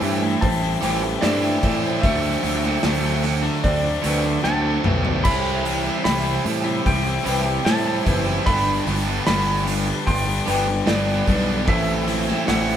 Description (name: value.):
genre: post-rock.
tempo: 75 BPM.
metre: 4/4.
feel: straight.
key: C lydian.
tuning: A4 = 444 Hz.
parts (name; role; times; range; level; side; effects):
clean lap steel guitar; melody; 0.0-12.8 s; D5 to B5; -27 LUFS; equal; slapback echo.
felt-muted upright piano; arpeggios; 0.0-12.8 s; B4 to C6; -34 LUFS; right 1 dB; none.
semi-hollow electric guitar; arpeggios; 0.0-12.8 s; G2 to G4; -30 LUFS; left 3 dB; none.
cranked stack guitar; riff; 0.0-12.8 s; G2 to F#4; -24 LUFS; right 5 dB; overdrive, spring reverb.
tight distorted guitar; riff; 0.0-12.8 s; G2 to E4; -27 LUFS; left 7 dB; distortion.
fuzz picked electric bass; bass; 0.0-12.8 s; F#1 to A2; -24 LUFS; equal; overdrive.
loose indie drum kit; drums; 0.0-12.7 s; crash cymbal, hi-hat, kick drum, snare drum, toms; -25 LUFS; equal; none.
room: moderate studio reverb, RT60 0.6 s.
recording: band playing live in one room.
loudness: -18 LUFS.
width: side -9 dB against mid.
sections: 0.0-12.8 A section.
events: drum fill 4.4-5.3.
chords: 0.0 Am7; 2.0 D7; 5.3 Cmaj7; 8.5 G; 11.7 Am.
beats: 0.43 1.23 | 2.04 2.84 3.64 4.45 | 5.25 6.06 6.86 7.66 | 8.47 9.27 10.07 10.88 | 11.68 12.48.